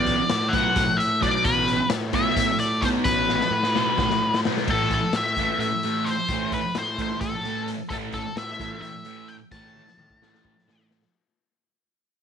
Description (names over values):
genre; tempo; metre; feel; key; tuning
psychedelic rock; 261 BPM (eighths); 7/8; straight; A dorian; A4 = 441 Hz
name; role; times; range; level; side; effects
octave-fuzz lead guitar; melody; 0.0-10.9 s; A4 to A5; -24 LUFS; left 2 dB; wah, distortion, slapback echo
thick fuzz guitar; riff; 0.0-11.0 s; A2 to B3; -27 LUFS; right 1 dB; distortion, phaser
fuzz fingered electric bass; bass; 0.0-11.0 s; A1 to A2; -30 LUFS; right 1 dB; overdrive
raw garage drum kit; drums; 0.1-11.1 s; crash cymbal, hi-hat, kick drum, snare drum, toms; -29 LUFS; left 3 dB; none
room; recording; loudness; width
light reverb, small room ambience; 1960s-style stereo; -21 LUFS; side -8 dB against mid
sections
0.0-4.7 A section; 4.7-11.1 B section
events
drum fill 3.3-4.7, 9.7-11.1; fade-out 4.7-11.1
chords
0.0 Bm7/A; 4.7 A5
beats
0.08 0.31 0.54 0.77 0.99 1.22 | 1.45 1.68 1.91 2.14 2.37 2.60 2.83 | 3.06 3.29 3.52 3.75 3.98 4.21 4.44 | 4.67 4.90 5.13 5.36 5.59 5.82 6.05 | 6.28 6.51 6.74 6.97 7.20 7.43 7.66 | 7.89 8.13 8.36 8.59 8.82 9.05 9.28 | 9.52 9.75 9.98 10.21 10.44 10.67 10.90